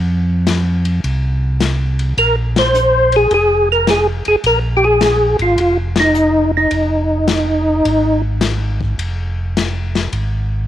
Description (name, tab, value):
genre	soul jazz organ trio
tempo	106 BPM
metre	4/4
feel	swing 68% on 8ths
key	F minor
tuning	A4 = 440 Hz
part	mellow tonewheel organ	bass	0.0-10.7 s	F1 to F2	-18 LUFS	equal	chorus vibrato, slow rotary speaker
part	warm soul drum kit	drums	0.5-10.3 s	hi-hat, kick drum, ride cymbal, snare drum	-22 LUFS	left 5 dB	none
part	percussive tonewheel organ	melody	2.2-8.2 s	Eb4 to C5	-13 LUFS	equal	slow rotary speaker, chorus vibrato
room	little or no reverb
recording	1960s-style stereo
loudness	-13 LUFS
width	side -11 dB against mid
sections	0.0-10.7 A section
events	band accent 2.5, 5.9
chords	0.0 F5; 2.2 Bb5; 6.7 Fm7